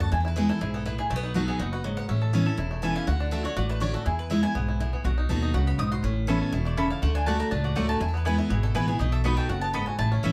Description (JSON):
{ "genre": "bluegrass", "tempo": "243 BPM", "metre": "4/4", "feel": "straight", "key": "unclear", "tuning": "A4 = 440 Hz", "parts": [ { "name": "bluegrass banjo", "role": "melody", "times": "0.0-10.3 s", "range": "F#3 to A4", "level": "-37 LUFS", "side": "equal", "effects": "none" }, { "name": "mandolin", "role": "melody", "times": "0.0-10.3 s", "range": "F#4 to D#6", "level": "-36 LUFS", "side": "equal", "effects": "none" }, { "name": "picked steel-string acoustic guitar", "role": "accompaniment", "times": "0.0-10.3 s", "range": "E2 to F#4", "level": "-30 LUFS", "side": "equal", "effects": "none" }, { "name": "upright bass", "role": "bass", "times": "0.0-10.3 s", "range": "E1 to E2", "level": "-30 LUFS", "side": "equal", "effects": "none" }, { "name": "mandolin", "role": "stabs", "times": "6.3-10.3 s", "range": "A3 to B5", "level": "-33 LUFS", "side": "equal", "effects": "none" } ], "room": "moderate small room reverb, RT60 0.6 s", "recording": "none", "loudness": "-26 LUFS", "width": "mono", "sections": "0.0-10.3 A section", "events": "none", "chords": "0.1 E; 1.1 B; 2.1 Aadd9; 3.1 D; 4.1 E; 5.0 B; 6.0 Aadd9; 7.0 D; 8.0 E; 9.0 B", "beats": "| 0.12 0.36 0.61 0.86 | 1.10 1.35 1.60 1.84 | 2.09 2.33 2.58 2.83 | 3.08 3.32 3.57 3.81 | 4.06 4.31 4.55 4.80 | 5.05 5.29 5.54 5.79 | 6.04 6.28 6.53 6.78 | 7.02 7.27 7.52 7.76 | 8.01 8.26 8.51 8.75 | 9.00 9.25 9.49 9.74 | 9.99 10.24" }